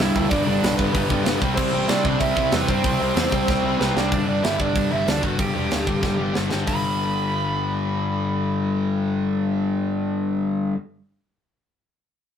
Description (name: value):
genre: punk rock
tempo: 188 BPM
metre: 4/4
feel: straight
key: G major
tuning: A4 = 440 Hz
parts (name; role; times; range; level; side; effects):
- high-gain lead guitar; melody; 0.0-10.0 s; B3 to B5; -26 LUFS; right 2 dB; distortion
- distorted electric guitar; riff; 0.0-10.8 s; G2 to C4; -30 LUFS; right 6 dB; distortion
- raw garage guitar; riff; 0.0-4.1 s; G2 to C4; -26 LUFS; right 1 dB; overdrive
- sludgy distorted guitar; riff; 0.0-10.8 s; G2 to C4; -24 LUFS; left 4 dB; overdrive
- fuzz picked electric bass; bass; 0.0-10.7 s; E1 to C3; -30 LUFS; equal; overdrive
- tight metal drum kit; drums; 0.0-6.8 s; crash cymbal, hi-hat, kick drum, snare drum; -25 LUFS; equal; none
room: light reverb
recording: rough rehearsal-room recording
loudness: -19 LUFS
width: side -8 dB against mid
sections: 0.0-4.1 A section; 4.1-6.7 B section; 6.7-9.3 C section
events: drum fill 3.5-4.1, 6.0-6.7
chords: 0.0 G; 1.4 C; 4.1 G5; 6.7 G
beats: | 0.31 0.63 0.94 1.26 | 1.58 1.89 2.21 2.53 | 2.84 3.16 3.48 3.80 | 4.12 4.43 4.75 5.07 | 5.39 5.71 6.04 6.36 | 6.68 7.00 7.32 7.64 | 7.96 8.29 8.61 8.93